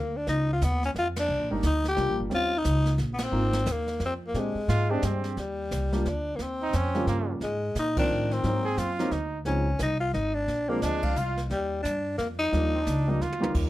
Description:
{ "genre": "jazz, small-group swing and bop", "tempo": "176 BPM", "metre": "3/4", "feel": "swing 62% on 8ths", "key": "Eb major", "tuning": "A4 = 440 Hz", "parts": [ { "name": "growling tenor saxophone", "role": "melody", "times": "0.0-13.4 s", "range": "G3 to G4", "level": "-28 LUFS", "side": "left 1 dB", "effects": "none" }, { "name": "upright bass", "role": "bass", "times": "0.0-13.7 s", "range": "G1 to Bb2", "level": "-29 LUFS", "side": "equal", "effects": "none" }, { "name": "jazz brush drum kit", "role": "drums", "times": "0.3-13.7 s", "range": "brushed snare drum, crash cymbal, hi-hat, kick drum, ride cymbal, snare drum, toms", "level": "-36 LUFS", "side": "right 1 dB", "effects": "none" }, { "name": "warm baby grand piano", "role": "accompaniment", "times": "1.5-13.7 s", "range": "Eb2 to Bb4", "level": "-30 LUFS", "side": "right 1 dB", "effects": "none" }, { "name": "clear trumpet", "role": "second line", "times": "4.7-13.6 s", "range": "Bb3 to Ab4", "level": "-32 LUFS", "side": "right 4 dB", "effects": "none" } ], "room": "light reverb", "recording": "close, detailed microphones", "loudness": "-25 LUFS", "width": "side -15 dB against mid", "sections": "0.0-5.4 A section; 5.4-13.5 B section", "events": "drum fill 1.0-1.3, 13.2-13.5; band accent 1.1, 3.2, 7.9, 11.0", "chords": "0.3 Dbadd9; 1.3 C7sus2; 2.3 Eb13; 3.3 Ab69; 4.4 Bb13; 5.4 Ebmaj7; 6.4 Eb9; 7.4 Ab6; 8.4 Ab7; 9.5 Dbmaj7; 10.5 Bb9; 11.5 Ebmaj9" }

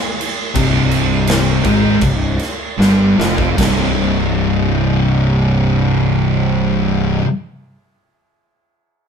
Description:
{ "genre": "stoner and doom metal", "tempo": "74-86 BPM", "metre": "4/4", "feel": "straight", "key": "unclear", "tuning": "A4 = 440 Hz", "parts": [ { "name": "big rock drum kit", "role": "drums", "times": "0.2-3.8 s", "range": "crash cymbal, kick drum, snare drum", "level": "-20 LUFS", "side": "right 1 dB", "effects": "none" }, { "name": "thick fuzz guitar", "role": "riff", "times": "0.5-7.3 s", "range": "C2 to Ab3", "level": "-16 LUFS", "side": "left 6 dB", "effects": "distortion" }, { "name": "thick fuzz guitar", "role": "riff", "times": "0.6-7.2 s", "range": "C2 to Ab3", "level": "-18 LUFS", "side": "right 9 dB", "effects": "distortion" }, { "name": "fuzz fingered electric bass", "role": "bass", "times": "0.6-7.2 s", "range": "C1 to Ab1", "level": "-19 LUFS", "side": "equal", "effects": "overdrive, tube saturation" } ], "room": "light reverb", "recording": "band playing live in one room", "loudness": "-13 LUFS", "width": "side -7 dB against mid", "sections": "0.0-3.6 A section; 3.6-6.8 B section", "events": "slowing down 0.0-3.6; drum fill 2.8-3.6", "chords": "0.0 C5" }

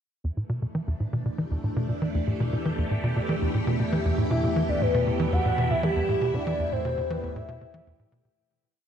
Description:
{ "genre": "ambient, sequencer-driven space music", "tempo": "118 BPM", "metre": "4/4", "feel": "straight", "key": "E minor", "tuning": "A4 = 440 Hz", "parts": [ { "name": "phased string machine", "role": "sustained chords", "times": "0.2-8.4 s", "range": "E3 to G4", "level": "-31 LUFS", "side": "equal", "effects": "ensemble chorus, phaser" }, { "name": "tight sequencer bass", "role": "riff", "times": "0.2-8.3 s", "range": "E2 to E3", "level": "-26 LUFS", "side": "equal", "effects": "analog chorus, cassette tape, ping-pong delay" }, { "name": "analog drone", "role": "bass", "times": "1.4-8.3 s", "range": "E2", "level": "-35 LUFS", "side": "equal", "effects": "chorus" }, { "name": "soft octave-layered synth lead", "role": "melody", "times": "4.3-8.1 s", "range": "G4 to F#5", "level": "-27 LUFS", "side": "equal", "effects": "chorus, phaser, ping-pong delay" } ], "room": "moderate lush hall reverb, RT60 3.0 s", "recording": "dark, warm production", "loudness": "-24 LUFS", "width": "side -8 dB against mid", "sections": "0.2-8.4 A section", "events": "fade-in on string machine 0.2-8.4; fade-in on synth drone 0.2-8.4; fade-out 5.7-8.4", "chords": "0.2 Em7" }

